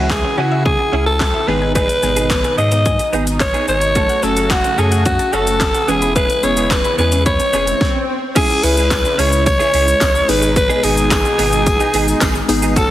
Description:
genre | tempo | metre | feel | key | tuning
dance-pop | 109 BPM | 4/4 | straight | C# minor | A4 = 440 Hz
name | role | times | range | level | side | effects
raspy alto saxophone | melody | 0.0-12.9 s | F#4 to D#5 | -16 LUFS | equal | none
glassy wavetable pluck | accompaniment | 0.0-12.9 s | D#3 to B4 | -22 LUFS | left 1 dB | chorus, sidechain pumping
soft supersaw | sustained chords | 0.0-12.9 s | B2 to F#4 | -24 LUFS | right 1 dB | sidechain pumping
direct-recorded clean electric guitar | riff | 0.0-12.9 s | B3 to A4 | -24 LUFS | right 4 dB | ensemble chorus
warm sub bass | bass | 0.0-12.9 s | E1 to C#3 | -20 LUFS | equal | sidechain pumping
mallet-like synth pluck | arpeggios | 0.1-7.6 s | B3 to B5 | -28 LUFS | left 2 dB | chorus, sidechain pumping, digital delay
house drum kit | drums | 0.1-12.9 s | crash cymbal, handclaps, hi-hat, kick drum, shaker, snare drum | -19 LUFS | equal | overdrive
swell | sound effects | 7.3-8.4 s | none | -26 LUFS | equal | none
tambourine | percussion | 8.4-12.9 s | none | -33 LUFS | left 4 dB | none
room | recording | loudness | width
light reverb | heavily compressed radio sound, multiband compression | -13 LUFS | side -13 dB against mid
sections
0.0-8.4 A section; 8.4-12.9 B section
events
swell 7.3-8.4; stop 7.8-8.4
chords
0.0 C#m; 1.5 G#m; 4.0 F#m; 5.9 E6; 8.4 C#m; 10.3 G#m

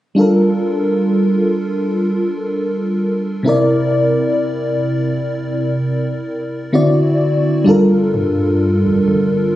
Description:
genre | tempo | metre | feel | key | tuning
contemporary R&B | 64 BPM | 4/4 | straight | unclear | A4 = 440 Hz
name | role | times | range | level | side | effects
FM electric piano with soft pad layer | accompaniment | 0.1-9.6 s | C3 to D5 | -14 LUFS | equal | chorus
long sustained 808-style bass | bass | 7.7-9.6 s | F1 to G2 | -21 LUFS | equal | none
room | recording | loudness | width
moderate lush hall reverb, RT60 2.8 s | recorded on a phone in the room, club reverb | -14 LUFS | side -14 dB against mid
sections
0.2-7.7 A section; 7.7-9.6 B section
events
none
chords
0.2 Gm7; 3.5 C9; 6.7 D7; 7.7 Gm7

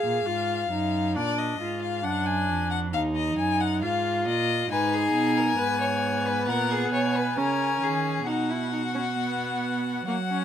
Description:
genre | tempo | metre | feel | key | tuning
classical, baroque-style fugue for string quartet | 67 BPM | 4/4 | straight | Eb minor, B major from 4.7 s | A4 = 440 Hz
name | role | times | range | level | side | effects
clear violin | melody | 0.0-10.4 s | D5 to Ab5 | -28 LUFS | left 6 dB | none
warm viola | accompaniment | 0.0-10.4 s | A#3 to Ab4 | -28 LUFS | right 1 dB | none
rich cello | bass | 0.0-10.4 s | Eb2 to F#3 | -30 LUFS | right 4 dB | none
bright violin | second line | 4.7-10.4 s | F#4 to C#5 | -30 LUFS | left 3 dB | none
room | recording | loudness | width
light reverb | none | -23 LUFS | side -9 dB against mid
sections
0.0-10.4 A section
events
none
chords
0.0 Fm; 1.2 Bb7; 2.9 Ebm; 4.7 G#m; 8.3 B

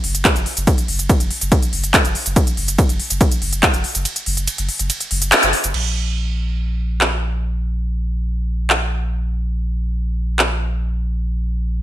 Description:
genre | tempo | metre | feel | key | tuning
driving peak-time techno | 142 BPM | 4/4 | straight | unclear | A4 = 439 Hz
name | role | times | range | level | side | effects
saturated sub bass | bass | 0.0-11.8 s | Gb1 to Bb1 | -21 LUFS | equal | sidechain pumping, low-pass filter
techno drum kit | drums | 0.0-10.5 s | crash cymbal, handclaps, hi-hat, ride cymbal, shaker | -18 LUFS | equal | sidechain pumping on hats, studio reverb, sidechain pumping on perc, sidechain pumping on cymbals
electronic kick drum | drums | 0.2-3.7 s | none | -16 LUFS | equal | studio reverb
room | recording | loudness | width
light reverb | none | -16 LUFS | side -13 dB against mid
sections
0.0-5.7 A section; 5.7-11.8 B section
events
drop 0.0-5.7; kick drops out 4.1-5.7; band accent 5.3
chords
none

